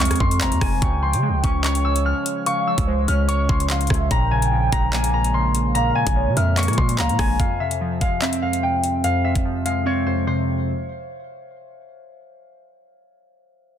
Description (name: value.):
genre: hip hop, drill.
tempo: 146 BPM.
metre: 4/4.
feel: half-time.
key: F harmonic minor.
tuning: A4 = 443 Hz.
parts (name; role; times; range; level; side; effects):
concert harp; melody; 0.0-12.3 s; C5 to F6; -24 LUFS; left 3 dB; low-pass filter, digital delay.
glassy digital keys; accompaniment; 0.0-10.7 s; F2 to Db5; -23 LUFS; right 1 dB; chorus, low-pass filter.
hard-hitting 808-style bass; bass; 0.0-7.4 s; F1 to Db3; -21 LUFS; equal; none.
drill drum kit; drums; 0.0-9.8 s; handclaps, hi-hat, kick drum, rim click; -23 LUFS; equal; none.
warm velvety synth lead; second line; 0.8-7.4 s; C5 to Ab5; -28 LUFS; right 4 dB; chorus, digital delay.
room: little or no reverb.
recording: dense, heavily limited modern master.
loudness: -18 LUFS.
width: side -9 dB against mid.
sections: 0.0-7.4 A section; 7.4-10.7 B section.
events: silent gap 9.9-10.7.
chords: 0.0 Fm; 0.8 Db; 4.1 Bbm7; 7.4 Fm.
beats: 0.00 0.41 | 0.82 1.23 1.64 2.05 | 2.46 2.88 3.29 3.70 | 4.11 4.52 4.93 5.34 | 5.75 6.16 6.57 6.99 | 7.40 7.81 8.22 8.63 | 9.04 9.45 9.86 10.27.